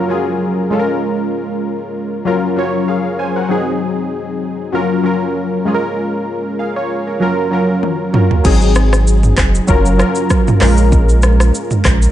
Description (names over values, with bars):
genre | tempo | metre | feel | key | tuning
afrobeats | 97 BPM | 4/4 | swing 55% on 16ths | unclear | A4 = 440 Hz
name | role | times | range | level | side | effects
warm analog keys | accompaniment | 0.0-12.1 s | Gb3 to Ab5 | -15 LUFS | left 1 dB | chorus
deep house drum kit | drums | 7.8-12.1 s | crash cymbal, handclaps, hi-hat, kick drum, rim click, shaker, toms | -14 LUFS | equal | none
warm sub bass | bass | 8.4-12.1 s | Gb1 to Bb1 | -12 LUFS | equal | none
room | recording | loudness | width
digital ambience | nothing above 10.4 kHz | -12 LUFS | side -12 dB against mid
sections
0.0-8.4 A section; 8.4-12.1 B section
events
drum fill 7.8-8.4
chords
0.0 Gbmaj7; 0.7 Bbm7; 2.3 Gbmaj7; 3.5 Ab7; 4.7 Gbmaj7; 5.7 Bbm7; 7.2 Gbmaj7; 8.4 Ab7; 9.7 Gbmaj7; 10.6 Bbm7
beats
0.41 | 1.02 1.64 2.26 2.88 | 3.50 4.12 4.74 5.36 | 5.97 6.59 7.21 7.83 | 8.45 9.07 9.69 10.30 | 10.92 11.54